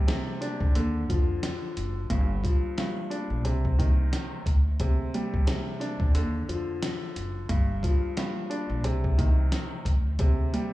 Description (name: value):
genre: hip hop, boom-bap hip-hop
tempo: 89 BPM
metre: 4/4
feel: swing 56% on 16ths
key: unclear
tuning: A4 = 440 Hz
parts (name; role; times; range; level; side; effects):
- clear upright piano; accompaniment; 0.0-10.7 s; G2 to D4; -31 LUFS; equal; cassette tape, high-pass filter, low-pass filter
- dusty soul sampler-style drum kit; drums; 0.1-10.7 s; hi-hat, kick drum, snare drum; -26 LUFS; equal; vintage 12-bit sampler grit
- upright bass; bass; 0.6-10.5 s; F#1 to F2; -28 LUFS; equal; none
room: light reverb, small room ambience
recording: none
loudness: -24 LUFS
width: side -17 dB against mid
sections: 0.0-10.7 A section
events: none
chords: 0.0 D7sus4; 0.8 Ebsus2; 2.1 G7(no3); 3.5 Cm; 4.5 D7sus4; 6.1 Ebsus2; 7.5 G7(no3); 8.8 Cm; 9.9 D7sus4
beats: 0.08 0.75 1.43 | 2.10 2.77 3.45 4.12 | 4.80 5.47 6.15 6.82 | 7.49 8.17 8.84 9.52 | 10.19